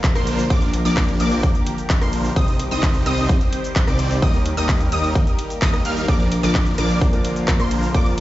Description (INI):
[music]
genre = EDM, festival progressive house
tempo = 129 BPM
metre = 4/4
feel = straight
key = Bb major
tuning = A4 = 440 Hz
[part]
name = lush unison pad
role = sustained chords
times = 0.0-8.2 s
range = D3 to C5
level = -28 LUFS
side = equal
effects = chorus, phaser, sidechain pumping
[part]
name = big-room dance drum kit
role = drums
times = 0.0-8.2 s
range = handclaps, hi-hat, ride cymbal, rim click, shaker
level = -28 LUFS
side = equal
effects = overdrive
[part]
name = electronic kick drum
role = drums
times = 0.0-8.0 s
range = none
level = -18 LUFS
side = equal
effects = overdrive
[part]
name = downlifter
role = sound effects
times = 0.0-2.4 s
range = none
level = barely audible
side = none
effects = none
[part]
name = wide unison pluck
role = arpeggios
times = 0.2-8.1 s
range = C6 to F6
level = -28 LUFS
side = equal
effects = ensemble chorus, sidechain pumping, digital delay
[part]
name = supersaw chords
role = riff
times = 0.2-8.1 s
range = F3 to F5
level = -25 LUFS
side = equal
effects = phaser, sidechain pumping, digital delay
[part]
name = wide detuned saw bass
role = bass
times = 0.2-8.2 s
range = Bb1 to Eb2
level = -23 LUFS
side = equal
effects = chorus, sidechain pumping
[part]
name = warm grand piano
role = accompaniment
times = 6.1-8.1 s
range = Bb2 to Bb4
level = -24 LUFS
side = equal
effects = sidechain pumping, digital delay
[sound]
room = little or no reverb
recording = played on a big sound system in a bare room, large studio reverb, nothing above 7.8 kHz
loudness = -16 LUFS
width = side -15 dB against mid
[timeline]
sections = 0.0-8.2 A section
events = none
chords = 0.0 Bb; 2.4 Cm; 4.2 Eb; 6.1 Bb